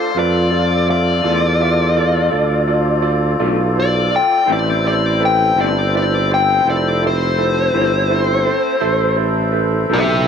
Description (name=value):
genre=blues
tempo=55 BPM (dotted quarters)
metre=12/8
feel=straight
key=A minor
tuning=A4 = 440 Hz
part: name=dark smooth lead guitar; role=melody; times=0.0-10.3 s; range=C5 to G5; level=-18 LUFS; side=left 2 dB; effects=overdrive
part: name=clear grand piano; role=accompaniment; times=0.0-10.3 s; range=E4 to E5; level=-22 LUFS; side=right 10 dB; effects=none
part: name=mellow horn section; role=sustained chords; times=0.0-10.3 s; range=A3 to F4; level=-25 LUFS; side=left 9 dB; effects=none
part: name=tonewheel organ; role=sustained chords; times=0.0-10.3 s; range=C4 to D5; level=-23 LUFS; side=equal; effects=slow rotary speaker
part: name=mellow tuba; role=bass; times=0.2-10.3 s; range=F1 to F2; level=-19 LUFS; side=equal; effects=none
part: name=electric guitar through a small old amp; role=accompaniment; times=1.2-10.1 s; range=A2 to F4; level=-25 LUFS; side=left 13 dB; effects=tremolo
room=moderate echo chamber reverb, RT60 1.5 s, studio reverb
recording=1960s-style stereo with parts hard left and right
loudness=-13 LUFS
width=side -7 dB against mid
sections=0.0-10.3 A section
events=lead electric guitar solo 0.0-10.3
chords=0.0 Dm; 4.5 Am